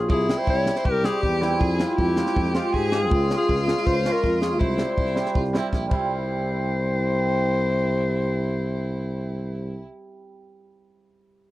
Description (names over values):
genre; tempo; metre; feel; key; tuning
klezmer; 160 BPM; 4/4; straight; C phrygian dominant; A4 = 440 Hz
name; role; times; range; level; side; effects
warm clarinet; melody; 0.0-9.8 s; E4 to Db5; -26 LUFS; left 3 dB; none
mellow tuba; bass; 0.0-9.8 s; Bb1 to Ab2; -26 LUFS; equal; none
clear violin; second line; 0.1-9.8 s; E4 to Ab4; -31 LUFS; left 1 dB; none
crisp fusion drum kit; drums; 0.1-6.0 s; crash cymbal, kick drum, snare drum; -25 LUFS; equal; none
cimbalom; accompaniment; 0.3-10.6 s; G3 to F4; -28 LUFS; right 3 dB; none
room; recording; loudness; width
light reverb; dry, close 1970s-style studio recording; -21 LUFS; side -16 dB against mid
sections
0.0-6.1 A section; 6.1-9.1 B section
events
drum fill 5.7-6.1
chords
0.1 C; 1.6 Fm; 3.1 Db; 4.6 C